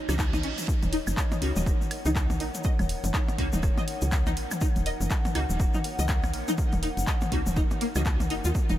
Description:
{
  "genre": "minimal techno",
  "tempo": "122 BPM",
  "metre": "4/4",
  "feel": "swing 59% on 16ths",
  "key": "Eb minor",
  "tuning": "A4 = 440 Hz",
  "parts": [
    { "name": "reverse cymbal", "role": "sound effects", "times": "0.0-0.7 s", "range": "none", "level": "-41 LUFS", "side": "right 5 dB", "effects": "none" },
    { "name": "warbly tape-like pad", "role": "texture", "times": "0.0-8.8 s", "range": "Eb4 to Gb5", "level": "-37 LUFS", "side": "left 2 dB", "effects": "chorus, built-in reverb, sidechain pumping" },
    { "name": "string-like resonator pluck", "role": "riff", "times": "0.1-8.7 s", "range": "Bb3 to Eb5", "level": "-34 LUFS", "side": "left 1 dB", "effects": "ensemble chorus, sidechain pumping, diffuse ambient delay" },
    { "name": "wavetable chord stab", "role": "stabs", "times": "0.1-8.0 s", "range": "Bb3 to Gb4", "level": "-38 LUFS", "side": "equal", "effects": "ensemble chorus, diffuse ambient delay" },
    { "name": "woody FM bass", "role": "bass", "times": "0.1-8.8 s", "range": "Eb1 to Eb2", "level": "-29 LUFS", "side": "equal", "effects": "sidechain pumping" },
    { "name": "punchy analog drum machine", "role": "drums", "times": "0.1-8.8 s", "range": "handclaps, hi-hat", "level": "-37 LUFS", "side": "equal", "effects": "none" },
    { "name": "electronic toms, claves and percussion blips", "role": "percussion", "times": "0.1-8.8 s", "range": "none", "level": "-34 LUFS", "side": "left 1 dB", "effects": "diffuse ambient delay" },
    { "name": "tube shaker", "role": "percussion", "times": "0.1-8.8 s", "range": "none", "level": "-40 LUFS", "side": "left 3 dB", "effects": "none" },
    { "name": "electronic kick drum", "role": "drums", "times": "0.2-8.7 s", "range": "none", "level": "-27 LUFS", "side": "equal", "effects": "none" },
    { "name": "pulsing gated texture", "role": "texture", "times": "1.0-8.8 s", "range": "Bb3 to Bb4", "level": "-44 LUFS", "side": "equal", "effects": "chorus, built-in reverb, sidechain pumping" }
  ],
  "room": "light reverb",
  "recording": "none",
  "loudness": "-24 LUFS",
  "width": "side -13 dB against mid",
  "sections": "0.0-8.8 A section",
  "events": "reverse cymbal 0.0-0.7",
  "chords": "0.0 Ebm7"
}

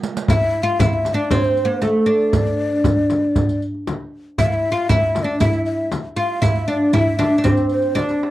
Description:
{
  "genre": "Arabic maqam ensemble",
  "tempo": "117 BPM",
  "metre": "4/4",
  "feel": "straight",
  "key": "unclear",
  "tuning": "A4 = 439 Hz",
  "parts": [
    { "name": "riq", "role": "percussion", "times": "0.0-8.2 s", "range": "none", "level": "-29 LUFS", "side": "right 5 dB", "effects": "none" },
    { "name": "oud", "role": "melody", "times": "0.3-8.3 s", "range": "A3 to F4", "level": "-19 LUFS", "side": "equal", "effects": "none" },
    { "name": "breathy ney", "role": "second line", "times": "0.3-8.3 s", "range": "A4 to F5", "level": "-24 LUFS", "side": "left 4 dB", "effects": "none" },
    { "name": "darbuka", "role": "percussion", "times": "0.3-8.3 s", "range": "none", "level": "-22 LUFS", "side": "right 2 dB", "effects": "none" },
    { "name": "frame drum", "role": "percussion", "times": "0.3-8.1 s", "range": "none", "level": "-23 LUFS", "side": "left 2 dB", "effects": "none" }
  ],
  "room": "little or no reverb",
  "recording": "dry, close 1970s-style studio recording",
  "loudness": "-16 LUFS",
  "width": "side -15 dB against mid",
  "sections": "0.3-8.3 A section",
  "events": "drum fill 0.0, 8.0-8.3",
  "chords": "none"
}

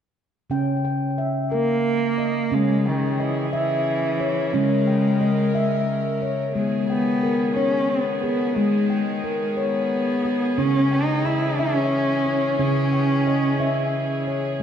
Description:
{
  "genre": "world meditative",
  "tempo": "60 BPM (dotted quarters)",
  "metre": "6/8",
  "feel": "straight",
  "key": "unclear",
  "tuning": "A4 = 438 Hz",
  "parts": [
    { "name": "handpan", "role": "arpeggios", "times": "0.5-14.6 s", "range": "C#3 to G5", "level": "-22 LUFS", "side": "left 1 dB", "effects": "ping-pong delay" },
    { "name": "warm cello", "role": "melody", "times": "1.5-14.2 s", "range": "D#3 to E4", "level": "-23 LUFS", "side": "equal", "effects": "ping-pong delay" },
    { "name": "bright chamber string section", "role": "sustained chords", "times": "2.5-14.6 s", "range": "C#3 to A#4", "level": "-29 LUFS", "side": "equal", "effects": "none" }
  ],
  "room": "wet echo chamber reverb, RT60 2.4 s",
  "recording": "dark, warm production",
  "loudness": "-19 LUFS",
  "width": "side -8 dB against mid",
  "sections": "0.5-2.5 A section; 2.5-14.6 B section",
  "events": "none",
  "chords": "0.5 C#m; 6.6 G#m; 10.6 C#m"
}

